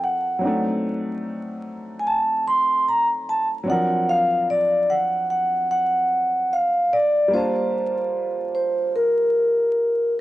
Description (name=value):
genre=R&B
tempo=74 BPM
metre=4/4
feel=swing 54% on 16ths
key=unclear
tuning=A4 = 441 Hz
part: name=vibraphone with medium mallets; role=melody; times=0.0-10.1 s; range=Bb4 to C6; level=-19 LUFS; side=equal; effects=cassette tape
part: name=clear concert grand piano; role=accompaniment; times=0.0-10.2 s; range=F3 to A5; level=-28 LUFS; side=equal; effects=cassette tape
room=light reverb, studio reverb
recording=home recording on cassette, vinyl crackle, nothing above 10.4 kHz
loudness=-19 LUFS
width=side -16 dB against mid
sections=0.0-10.2 A section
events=none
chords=0.4 D7b9; 3.7 D7alt; 7.3 Gm9